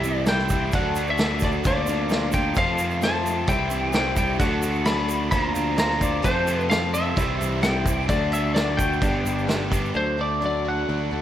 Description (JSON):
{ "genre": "folk rock and heartland rock", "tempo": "130 BPM", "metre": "4/4", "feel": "straight", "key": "unclear", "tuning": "A4 = 439 Hz", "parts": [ { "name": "lightly driven lead guitar", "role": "melody", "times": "0.0-11.2 s", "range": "C5 to B5", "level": "-26 LUFS", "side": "left 1 dB", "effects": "slapback echo" }, { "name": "clear upright piano", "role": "accompaniment", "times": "0.0-11.2 s", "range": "C4 to D5", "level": "-38 LUFS", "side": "right 2 dB", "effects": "none" }, { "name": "picked twelve-string acoustic guitar", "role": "accompaniment", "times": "0.0-11.2 s", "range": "F2 to A4", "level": "-32 LUFS", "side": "left 4 dB", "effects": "none" }, { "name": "pedal harmonium", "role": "sustained chords", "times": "0.0-11.2 s", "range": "D4 to D5", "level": "-38 LUFS", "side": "right 2 dB", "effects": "none" }, { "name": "overdriven electric guitar", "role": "riff", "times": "0.0-11.2 s", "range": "F2 to G4", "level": "-28 LUFS", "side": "equal", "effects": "none" }, { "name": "picked electric bass", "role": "bass", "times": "0.0-11.2 s", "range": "G1 to F2", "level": "-28 LUFS", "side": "equal", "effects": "none" }, { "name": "vintage drum kit", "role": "drums", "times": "0.0-9.8 s", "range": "crash cymbal, kick drum, snare drum", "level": "-25 LUFS", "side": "equal", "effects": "none" }, { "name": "egg shaker", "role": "percussion", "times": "0.0-9.9 s", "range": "none", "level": "-40 LUFS", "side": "right 9 dB", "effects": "none" } ], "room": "light reverb, small room ambience", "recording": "none", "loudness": "-20 LUFS", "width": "side -11 dB against mid", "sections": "0.0-9.9 A section; 9.9-11.2 B section", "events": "none", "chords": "0.0 C; 0.7 D; 1.6 Bbadd9/D; 2.6 F; 3.5 C; 4.4 D; 5.3 Bbadd9/D; 6.2 F; 7.2 C; 8.1 D; 9.0 G; 9.9 D" }